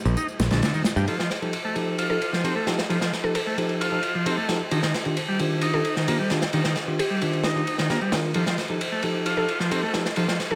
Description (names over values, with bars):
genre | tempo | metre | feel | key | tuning
breakbeat, breaks | 132 BPM | 4/4 | straight | F mixolydian | A4 = 440 Hz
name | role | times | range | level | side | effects
mallet-like synth pluck | melody | 0.0-10.6 s | G4 to A4 | -34 LUFS | equal | chorus, small speaker sound, digital delay
modern bright picked electric bass | bass | 0.1-1.1 s | Bb1 to G2 | -24 LUFS | equal | none
tambourine | drums | 0.1-1.1 s | none | -42 LUFS | equal | overdrive
combo organ | riff | 0.2-10.4 s | D3 to F4 | -30 LUFS | equal | low-pass filter, digital delay
crunchy breakbeat drum kit | drums | 0.4-10.5 s | ride cymbal, snare drum | -29 LUFS | equal | high-pass filter on kick, high-pass filter on cymbals, high-pass filter on snare, high-pass filter on room
bell-like tine electric piano | stabs | 1.1-10.6 s | Eb3 to Bb4 | -30 LUFS | equal | vintage 12-bit sampler grit, low-pass filter, digital delay
room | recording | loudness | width
light reverb | none | -24 LUFS | mono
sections
0.0-1.1 A section; 1.1-10.6 B section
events
kick drops out 0.2-1.1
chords
0.0 Ebmaj7; 1.1 F7; 4.7 Ebmaj7; 8.4 F7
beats
0.17 0.62 | 1.08 1.53 1.99 2.44 | 2.90 3.35 3.81 4.26 | 4.71 5.17 5.62 6.08 | 6.53 6.99 7.44 7.90 | 8.35 8.81 9.26 9.71 | 10.17